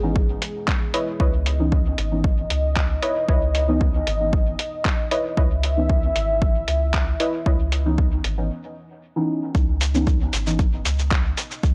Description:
dub techno; 115 BPM; 4/4; straight; C# minor; A4 = 440 Hz
dark analog pad; sustained chords; 0.0-11.7 s; E3 to E5; -30 LUFS; equal; chorus, sidechain pumping
deep mellow chord stab; stabs; 0.0-10.6 s; E3 to D#4; -29 LUFS; equal; chorus, phaser, sidechain pumping, dub echo
soft dub sub bass; bass; 0.0-11.7 s; G#1 to C#2; -26 LUFS; equal; sidechain pumping
electronic kick drum; drums; 0.2-11.7 s; -24 LUFS; equal; overdrive, studio reverb
lo-fi sampler-style drum kit; drums; 0.4-11.7 s; handclaps, hi-hat, shaker; -29 LUFS; equal; studio reverb
warbly dusty pluck; riff; 0.9-7.6 s; E4 to D#5; -30 LUFS; equal; chorus, cassette tape, sidechain pumping, dub echo
digital ambience; dry, gritty hardware recording, cassette tape; -22 LUFS; mono
0.0-9.5 A section; 9.5-11.7 A section
break 8.5-9.5
0.0 C#m9
0.16 0.68 | 1.20 1.72 2.24 2.77 | 3.29 3.81 4.33 4.85 | 5.37 5.90 6.42 6.94 | 7.46 7.98 8.50 9.03 | 9.55 10.07 10.59 11.11 | 11.63

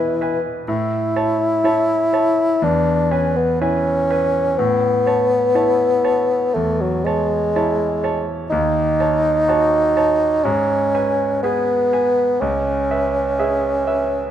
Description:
classical, romantic duo for bassoon and grand piano; 62 BPM; 4/4; rubato; A4 = 438 Hz
mellow bassoon; melody; 0.0-14.3 s; E3 to E4; -17 LUFS; left 1 dB
bright concert grand piano; accompaniment; 0.0-14.3 s; C#2 to A5; -21 LUFS; right 2 dB
light reverb; close, detailed microphones; -16 LUFS; side -10 dB against mid
0.0-14.3 A section
0.0 E; 0.7 A; 2.6 E; 4.6 A; 8.5 D#m7b5; 10.5 G#m; 12.4 C#m7
| 0.68 1.64 2.62 3.60 | 4.58 5.54 6.54 7.54 | 8.51 9.47 10.45 11.43 | 12.41 13.39

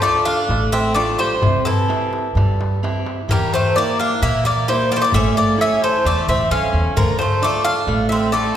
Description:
greek folk, Greek bouzouki band; 130 BPM; 4/4; straight; D minor; A4 = 437 Hz
Greek bouzouki; melody; 0.0-8.6 s; A4 to F5; -19 LUFS; left 2 dB
Greek bouzouki; second line; 0.0-8.5 s; E3 to D4; -24 LUFS; right 2 dB
picked steel-string acoustic guitar; accompaniment; 0.0-8.6 s; C3 to C#5; -23 LUFS; right 2 dB
darbuka; percussion; 0.0-8.4 s; -24 LUFS; left 2 dB
upright bass; bass; 0.5-8.5 s; A1 to Bb2; -22 LUFS; equal
wet scoring stage reverb, RT60 1.4 s; recorded in a church or concert hall; -15 LUFS; side -10 dB against mid
0.0-8.6 A section
speeding up 0.0-8.6
0.0 Dm; 1.4 C; 3.3 Edim; 5.1 A; 7.0 Dm
0.02 0.49 0.96 | 1.43 1.90 2.36 2.83 | 3.29 3.75 4.21 4.68 | 5.14 5.59 6.05 6.51 | 6.96 7.42 7.87 8.33

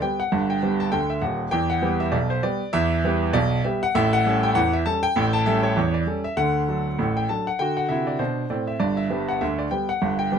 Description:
ragtime piano; 99 BPM; 2/4; swing 59% on 16ths; G major; A4 = 441 Hz
clear grand piano; solo; 0.0-10.4 s; Eb1 to A5; -20 LUFS; equal
light reverb; close, detailed microphones; -20 LUFS; side -7 dB against mid
0.0-10.4 A section
0.0 G; 1.5 Em; 3.9 A7; 6.4 D; 8.8 G
| 0.32 0.93 | 1.53 2.14 | 2.74 3.34 | 3.95 4.55 | 5.16 5.76 | 6.37 6.98 | 7.59 8.20 | 8.80 9.41 | 10.02

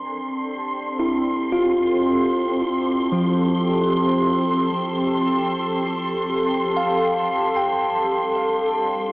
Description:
ambient; free time; F major; A4 = 444 Hz
shimmering ambient pad; sustained chords; 0.0-9.1 s; G3 to Bb4; -22 LUFS; equal; chorus, built-in reverb, phaser
tine electric piano; arpeggios; 0.0-9.1 s; F3 to G5; -23 LUFS; equal; medium stereo tremolo, dub echo
wind-like tuned noise texture; texture; 0.0-9.1 s; C6; -26 LUFS; right 1 dB; built-in reverb
wet plate reverb, RT60 3.8 s; echo-heavy mix, small speaker sound; -18 LUFS; side -22 dB against mid
0.0-9.1 A section
0.0 Fmaj9; 7.3 G9sus4
free time

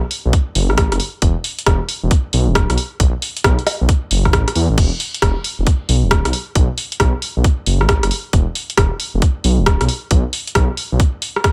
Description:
UK garage, two-step garage; 135 BPM; 4/4; swing 65% on 16ths; A4 = 440 Hz
punchy analog drum machine; drums; 0.1-11.5 s; bongos, crash cymbal, hi-hat, rim click; -22 LUFS; equal
dark detuned saw bass; bass; 0.3-11.0 s; D1 to E2; -19 LUFS; equal
electronic kick drum; drums; 0.3-11.5 s; -18 LUFS; equal
little or no reverb; -17 LUFS; mono
0.0-11.5 A section
0.33 0.78 | 1.22 1.66 2.11 2.55 | 3.00 3.44 3.89 4.33 | 4.78 5.22 5.66 6.11 | 6.55 7.00 7.44 7.89 | 8.33 8.78 9.22 9.66 | 10.11 10.55 11.00 11.44

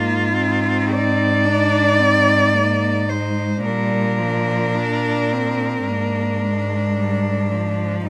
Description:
classical, lyrical piece for cello ensemble; 55 BPM; 4/4; rubato; A4 = 440 Hz
rich cello; melody; 0.0-8.1 s; F4 to D5; -22 LUFS; equal
warm cello; second line; 0.0-8.0 s; D4 to Eb4; -27 LUFS; equal
clear cello; accompaniment; 0.0-8.1 s; F3 to D4; -26 LUFS; equal
rich cello; bass; 0.0-8.0 s; Ab2 to Bb2; -24 LUFS; equal
little or no reverb; close, detailed microphones; -19 LUFS; mono
0.0-8.1 A section
0.0 Fm7/Ab; 3.6 Bb; 5.9 Bb7/Ab
0.35 1.47 2.56 | 3.65 4.75 5.87 6.97 | 8.06

